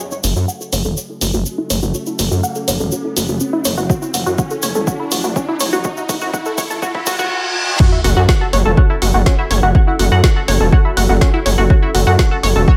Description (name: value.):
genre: melodic techno.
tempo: 123 BPM.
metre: 4/4.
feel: straight.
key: F# minor.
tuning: A4 = 439 Hz.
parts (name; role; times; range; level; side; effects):
dark analog pad; sustained chords; 0.0-12.8 s; C#4 to A4; -28 LUFS; equal; chorus, sidechain pumping.
tight sequenced synth; arpeggios; 0.0-12.8 s; C#4 to F#6; -22 LUFS; equal; chorus, sidechain pumping, delay.
riser, reverse cymbal and sub drop; sound effects; 0.0-9.8 s; none; -26 LUFS; equal; none.
tube shaker; percussion; 0.1-7.3 s; none; -28 LUFS; equal; none.
gritty driven synth bass; bass; 0.2-12.7 s; E1 to F#2; -19 LUFS; equal; tube saturation, sidechain pumping.
deep house drum kit; drums; 0.2-12.5 s; crash cymbal, hi-hat, snare drum; -24 LUFS; equal; high-pass filter on hats, high-pass filter on cymbals, high-pass filter on snare, high-pass filter on room.
electronic kick drum; drums; 3.9-12.8 s; none; -15 LUFS; equal; none.
room: light reverb, digital ambience.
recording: high-pass filter.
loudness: -16 LUFS.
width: mono.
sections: 0.0-7.8 A section; 7.8-12.8 B section.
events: build-up 0.0-7.8; riser 0.0-7.8; filter sweep on synth arpeggio sound 0.0-7.8; filter sweep on analog synth pad 0.0-7.8; drum fill 3.9-7.3; reverse cymbal 6.8-7.8; drop 7.8-12.8; impact 7.8-9.8.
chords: 0.0 F#m.